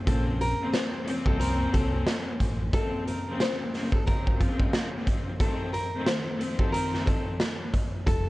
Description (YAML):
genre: hip hop, boom-bap hip-hop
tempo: 90 BPM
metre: 4/4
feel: swing 61% on 16ths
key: Bb harmonic minor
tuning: A4 = 440 Hz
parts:
  - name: nylon-string guitar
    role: melody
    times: 0.1-8.3 s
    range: F4 to C5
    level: -33 LUFS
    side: left 1 dB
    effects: high-pass filter, low-pass filter
  - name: warm studio string section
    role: accompaniment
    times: 0.1-8.0 s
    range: Db3 to Db4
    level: -32 LUFS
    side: left 2 dB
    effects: cassette tape, high-pass filter, low-pass filter
  - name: deep dub fingered electric bass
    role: bass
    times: 0.1-2.7, 8.1-8.3 s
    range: F1 to C2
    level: -29 LUFS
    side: equal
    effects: none
  - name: raw garage drum kit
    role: drums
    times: 0.1-8.3 s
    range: hi-hat, kick drum, snare drum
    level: -27 LUFS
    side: equal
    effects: vintage 12-bit sampler grit
room: little or no reverb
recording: worn, warbling old tape, cassette tape, warbly pitch drift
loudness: -25 LUFS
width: side -19 dB against mid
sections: 0.0-8.3 A section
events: none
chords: 0.1 Bbmadd9; 5.4 F7